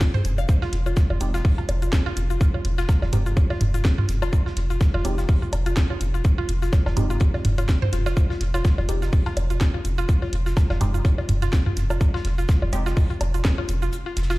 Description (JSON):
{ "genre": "minimal techno", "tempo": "125 BPM", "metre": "4/4", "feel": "swing 56% on 16ths", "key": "F minor", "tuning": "A4 = 438 Hz", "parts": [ { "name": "mallet-like synth pluck", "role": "riff", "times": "0.0-14.3 s", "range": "F4 to F5", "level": "-31 LUFS", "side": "equal", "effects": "chorus, sidechain pumping, tape echo" }, { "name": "damped 70s drum kit", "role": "drums", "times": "0.0-14.4 s", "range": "hi-hat, snare drum", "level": "-44 LUFS", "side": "left 2 dB", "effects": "high-pass filter on hats, high-pass filter on snare, high-pass filter on room" }, { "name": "electronic kick drum", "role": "drums", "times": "0.0-13.6 s", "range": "none", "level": "-18 LUFS", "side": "equal", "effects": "overdrive" }, { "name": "garage drum kit", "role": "drums", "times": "0.0-14.4 s", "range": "cabasa, hi-hat, snare drum", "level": "-32 LUFS", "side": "equal", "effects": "overdrive" }, { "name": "electronic toms, bongos and woodblock", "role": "percussion", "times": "0.1-13.7 s", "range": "none", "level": "-27 LUFS", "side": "equal", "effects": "ping-pong delay" }, { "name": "round analog bass", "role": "bass", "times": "0.2-14.4 s", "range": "F1", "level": "-24 LUFS", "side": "equal", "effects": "sidechain pumping" }, { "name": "filtered dub chord stab", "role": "stabs", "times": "1.2-12.8 s", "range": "Ab3 to G4", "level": "-34 LUFS", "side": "right 1 dB", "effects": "phaser, ping-pong delay" } ], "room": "digital ambience", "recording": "played on a big sound system in a bare room, large studio reverb", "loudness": "-19 LUFS", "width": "side -20 dB against mid", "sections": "0.0-14.4 A section", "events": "break 13.9-14.4", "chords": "none" }